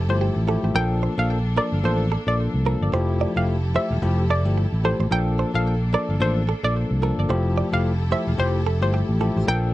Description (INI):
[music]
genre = afrobeats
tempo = 110 BPM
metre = 4/4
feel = swing 58% on 16ths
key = F major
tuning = A4 = 439 Hz
[part]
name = rich studio string section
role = sustained chords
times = 0.0-9.7 s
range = F3 to A4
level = -33 LUFS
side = equal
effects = none
[part]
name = direct-recorded clean electric guitar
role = riff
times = 0.0-9.6 s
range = G4 to D5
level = -29 LUFS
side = right 7 dB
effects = analog chorus, digital delay
[part]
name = fingered electric bass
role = bass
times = 0.0-9.7 s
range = E1 to C2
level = -22 LUFS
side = equal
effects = none
[part]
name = hollow square pluck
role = melody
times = 0.1-9.7 s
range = C5 to G5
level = -27 LUFS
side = equal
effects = chorus, digital delay
[part]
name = barky tine electric piano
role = accompaniment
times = 0.1-9.7 s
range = F3 to A4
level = -26 LUFS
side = left 3 dB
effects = none
[sound]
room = light reverb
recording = dark, warm production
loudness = -19 LUFS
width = side -16 dB against mid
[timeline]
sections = 0.0-9.7 A section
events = none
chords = 0.0 Fmaj9; 0.7 Bbmaj7; 2.9 Fmaj9; 5.1 Bbmaj7; 7.3 Fmaj9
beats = 0.20 | 0.75 1.29 1.84 2.38 | 2.93 3.48 4.02 4.57 | 5.11 5.66 6.20 6.75 | 7.29 7.84 8.38 8.93 | 9.48